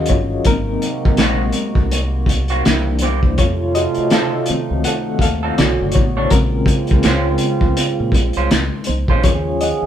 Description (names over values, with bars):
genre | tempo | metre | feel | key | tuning
R&B, neo-soul | 82 BPM | 4/4 | swing 57% on 16ths | unclear | A4 = 438 Hz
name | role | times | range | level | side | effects
bright reed electric piano | accompaniment | 0.0-9.9 s | C#3 to Gb5 | -21 LUFS | left 4 dB | overdrive, tremolo
hollow soft pad | sustained chords | 0.0-9.9 s | B2 to Gb4 | -27 LUFS | equal | chorus
mellow trombone section | stabs | 0.0-9.9 s | C3 to Ab4 | -23 LUFS | right 7 dB | none
deep dub fingered electric bass | bass | 0.0-9.9 s | F#1 to Bb2 | -21 LUFS | equal | none
cloth-damped thuddy drum kit | drums | 0.1-9.8 s | hi-hat, kick drum, snare drum | -17 LUFS | equal | none
congas | percussion | 0.1-9.8 s | none | -32 LUFS | right 6 dB | none
electric guitar through a small old amp | second line | 1.2-9.2 s | Eb3 to C#5 | -24 LUFS | right 3 dB | spring reverb
room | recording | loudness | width
light reverb | band playing live in one room | -14 LUFS | side -10 dB against mid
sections
0.0-9.9 A section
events
reed electric piano solo 0.0-9.9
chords
0.5 Ab9; 2.7 C7; 3.4 F7; 5.6 Bm9; 6.3 Bbm9; 9.2 Ebm9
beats
| 0.46 1.19 1.92 2.65 | 3.38 4.12 4.85 5.58 | 6.31 7.04 7.77 8.51 | 9.24